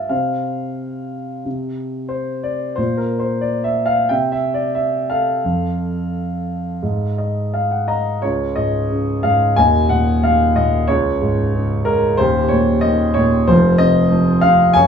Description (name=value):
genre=classical, lyrical solo piano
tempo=83-94 BPM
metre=4/4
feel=rubato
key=F major, Db major from 8.2 s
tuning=A4 = 440 Hz
part: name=dark concert grand piano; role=solo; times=0.0-14.9 s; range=Eb1 to Bb5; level=-15 LUFS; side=equal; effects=none
room=light reverb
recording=small room ambience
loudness=-15 LUFS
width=side -7 dB against mid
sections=0.0-8.2 A section; 8.2-14.9 B section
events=grand piano fill 6.8-8.2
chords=0.1 N.C.; 2.8 Bb5; 4.1 C; 5.4 F; 6.8 F7#9/G#; 8.2 Db; 9.6 Ebmadd9; 10.9 Db; 12.2 Eb; 13.5 Cmadd11/F